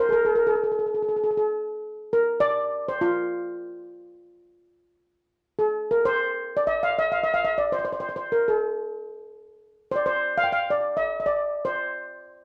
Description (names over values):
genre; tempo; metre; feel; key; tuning
Arabic maqam ensemble; free time; none; none; unclear; A4 = 440 Hz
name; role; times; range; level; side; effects
steel pan; solo; 0.0-12.4 s; F4 to G5; -25 LUFS; equal; slapback echo
room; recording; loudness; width
moderate booth ambience, RT60 0.2 s; dry, close 1970s-style studio recording; -25 LUFS; mono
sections
0.0-5.2 A section; 5.2-12.4 A section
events
none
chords
none